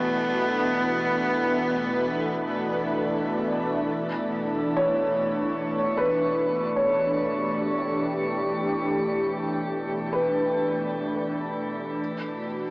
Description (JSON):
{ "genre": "ambient", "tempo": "free time", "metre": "none", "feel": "none", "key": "E dorian", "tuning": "A4 = 441 Hz", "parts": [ { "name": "clear cello", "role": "melody", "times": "0.0-2.8 s", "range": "B3", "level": "-30 LUFS", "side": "equal", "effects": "tape echo" }, { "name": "warm analog pad", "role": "sustained chords", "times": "0.0-12.7 s", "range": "B2 to G4", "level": "-26 LUFS", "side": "equal", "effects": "chorus" }, { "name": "organ-like drone", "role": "drone", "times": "0.0-3.9 s", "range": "B2 to E3", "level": "-42 LUFS", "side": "equal", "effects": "none" }, { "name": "felt-muted upright piano", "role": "arpeggios", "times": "4.8-12.7 s", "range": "B4 to C#5", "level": "-26 LUFS", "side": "equal", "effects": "tape echo" } ], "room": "wet shimmer reverb, RT60 8.1 s", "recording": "worn, warbling old tape, cassette tape, warbly pitch drift, small speaker sound", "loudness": "-23 LUFS", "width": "side -25 dB against mid", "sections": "0.0-3.9 A section; 3.9-12.7 B section", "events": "filter sweep on analog synth pad 0.0-3.9", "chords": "0.0 Gadd9 (rootless); 3.9 Em; 12.0 Bm7" }